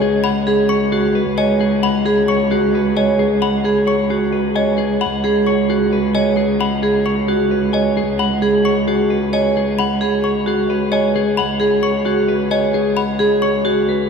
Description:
classical, minimalist pattern music; 264 BPM (eighths); 7/8; straight; A4 = 440 Hz
clean electric guitar; melody; 0.0-14.1 s; Ab4 to Ab5; -21 LUFS; left 7 dB
trough xylophone with plastic mallets; arpeggios; 0.0-13.7 s; Eb5 to Db6; -25 LUFS; left 3 dB
vibraphone with hard mallets; arpeggios; 0.0-13.9 s; Gb4 to Db5; -18 LUFS; right 3 dB
rich cello; bass; 0.0-14.1 s; Db2; -19 LUFS; right 1 dB
wet cathedral reverb, RT60 5.9 s; dark, warm production; -14 LUFS; side -6 dB against mid
0.0-14.1 A section
0.0 Db7sus4

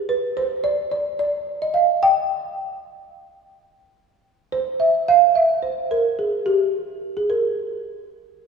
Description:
klezmer; 108 BPM; 4/4; straight; A4 = 438 Hz
folk marimba with soft mallets; solo; 0.1-8.1 s; G4 to G5; -18 LUFS; right 2 dB
wet concert hall reverb, RT60 2.4 s; recorded in a church or concert hall, studio reverb; -18 LUFS; side -5 dB against mid
0.0-4.5 A section; 4.5-8.5 B section

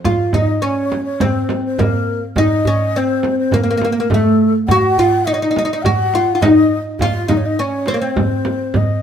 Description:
Arabic maqam ensemble; 104 BPM; 4/4; straight; F maqam hijaz; A4 = 440 Hz
frame drum; percussion; 0.0-8.9 s; -21 LUFS; right 2 dB
oud; melody; 0.1-9.0 s; A3 to Gb4+25c; -16 LUFS; equal
breathy low ney; second line; 0.1-9.0 s; A4 to Gb5+30c; -21 LUFS; left 4 dB
darbuka; percussion; 0.1-9.0 s; -21 LUFS; right 1 dB
moderate stone room reverb, RT60 1.0 s; band playing live in one room; -13 LUFS; side -8 dB against mid
0.0-9.0 A section

